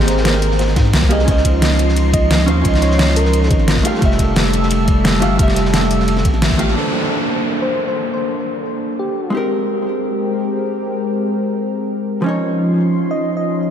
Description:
liquid drum and bass; 175 BPM; 4/4; straight; A4 = 438 Hz
vintage hollow-body jazz guitar; accompaniment; 0.0-13.7 s; F3 to F5; -20 LUFS; right 1 dB; ping-pong delay
lush unison pad; sustained chords; 0.0-13.7 s; F3 to C6; -20 LUFS; left 1 dB; chorus
saturated sub bass; bass; 0.0-6.8 s; F1 to Ab2; -17 LUFS; equal
crunchy breakbeat drum kit; drums; 0.0-6.8 s; ride cymbal, snare drum; -28 LUFS; equal; high-pass filter on cymbals, high-pass filter on snare, high-pass filter on room
pop drum kit; drums; 0.1-6.7 s; hi-hat, snare drum; -21 LUFS; equal; overdrive
electronic kick drum; drums; 0.8-6.6 s; -16 LUFS; equal; overdrive
soft struck synth lead; melody; 2.1-3.5, 7.6-9.4, 13.1-13.6 s; G4 to Eb5; -25 LUFS; right 1 dB; chorus, ping-pong delay
downlifter; sound effects; 6.8-9.5 s; -26 LUFS; equal
moderate cathedral reverb, RT60 6.0 s; dreamy mix soaked in reverb; -14 LUFS; side -9 dB against mid
0.0-6.8 A section; 6.8-13.7 B section
drop 0.0-6.8; band accent 6.4; filter sweep on analog synth pad 6.8-13.7
0.0 Abmaj9; 1.3 Dbmaj9; 3.9 Fmaj9; 6.8 Bbmaj9; 9.3 Abmaj9; 12.3 Dbmaj9

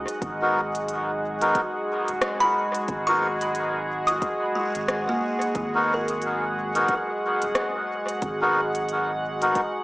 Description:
ambient dub; 90 BPM; 4/4; swing 59% on 16ths; G# minor; A4 = 439 Hz
deep dark ambient pad; sustained chords; 0.0-9.8 s; G#3 to F#5; -26 LUFS; equal; chorus, built-in reverb
soft dub sub bass; bass; 0.0-9.5 s; D#1 to G#1; -39 LUFS; equal
organic electronic drum kit; drums; 0.1-9.7 s; hi-hat, rim click; -31 LUFS; equal; overdrive, dub echo
electronic kick drum; drums; 0.2-9.7 s; -34 LUFS; equal; overdrive
melodica; stabs; 0.4-9.6 s; B3 to A#4; -26 LUFS; equal; dub echo
buzzing kalimba; arpeggios; 2.4-8.1 s; G#3 to D#6; -27 LUFS; equal; dub echo
wet echo chamber reverb, RT60 2.3 s; small speaker sound; -22 LUFS; side -20 dB against mid
0.0-9.8 A section
0.0 G#m7

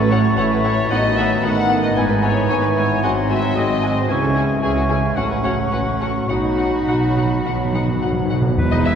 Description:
quick classical-period movement for symphony orchestra; 102-115 BPM; 4/4; rubato; A4 = 438 Hz
bright clarinet; second line; 0.0-9.0 s; B#3 to E4; -28 LUFS; left 1 dB
clear oboe; second line; 0.0-9.0 s; B4 to A5; -27 LUFS; equal
muted studio violin section; second line; 0.0-9.0 s; D#4 to F#5; -25 LUFS; left 2 dB
silver concert flute; second line; 0.0-9.0 s; D#5 to C#6; -28 LUFS; left 2 dB
mellow bassoon; accompaniment; 0.0-8.3 s; D#3 to G#3; -28 LUFS; left 1 dB
clear French horn section; sustained chords; 0.0-9.0 s; D#3 to E4; -25 LUFS; left 1 dB
muted studio cello section; bass; 0.0-9.0 s; E2 to C#3; -23 LUFS; right 2 dB
muted studio double bass section; bass; 0.0-9.0 s; E1 to C#2; -23 LUFS; right 2 dB
muted studio violin section; melody; 0.1-8.9 s; D#5 to G#5; -29 LUFS; left 4 dB
muted studio viola section; accompaniment; 0.1-9.0 s; G#3 to F#4; -28 LUFS; right 1 dB
timpani; percussion; 6.3-9.0 s; E2 to B2; -22 LUFS; left 1 dB
wet cathedral reverb, RT60 4.4 s; heard from further back in the room; -16 LUFS; side -8 dB against mid
0.0-8.6 A section
timpani fill 6.3-8.6
0.0 F#m7/A; 0.9 B7/A; 2.0 E/G#; 3.0 G#7; 4.1 C#m; 5.2 F#m/A; 6.3 B

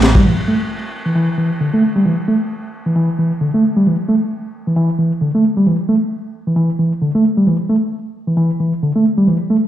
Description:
breakbeat; 133 BPM; 4/4; swing 57% on 16ths; E minor; A4 = 440 Hz
mellow reed electric piano; riff; 0.0-9.6 s; D3 to A3; -14 LUFS; equal; tube saturation, low-pass filter, digital delay
moderate digital room reverb, RT60 1.1 s, small room ambience; played on a big sound system in a bare room, large studio reverb; -14 LUFS; side -12 dB against mid
0.3-9.7 A section
filter sweep on reed electric piano 0.3-9.7

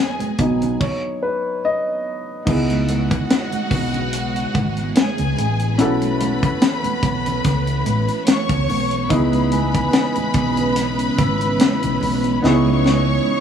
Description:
lush 1970s-style soul; 72 BPM; 4/4; swing 54% on 16ths; C# minor; A4 = 440 Hz
warm studio string section; second line; 0.0-13.4 s; F#4 to C#6; -24 LUFS; left 1 dB
dark grand piano; accompaniment; 0.0-13.4 s; F#3 to D#5; -23 LUFS; left 1 dB
string machine, full ensemble; sustained chords; 0.0-13.4 s; C#3 to D#5; -25 LUFS; right 1 dB; ensemble chorus
hollow-body short-scale fingered electric bass; bass; 0.2-13.2 s; G#1 to C#2; -22 LUFS; equal
tight funk drum kit; drums; 0.2-13.1 s; crash cymbal, hi-hat, kick drum, snare drum; -20 LUFS; equal
congas; percussion; 0.2-13.4 s; -27 LUFS; right 6 dB
vibraphone with soft mallets; texture; 1.6-2.7, 9.5-12.3 s; D#5 to E6; -32 LUFS; right 2 dB
light reverb, small room ambience; -16 LUFS; side -8 dB against mid
0.0-2.5 A section; 2.5-13.4 B section
grand piano solo 0.0-2.5; stop 0.8-2.5; drum fill 12.4-13.4
0.0 G#m7/B; 2.5 C#m9; 5.8 B9sus4; 9.1 C#m9

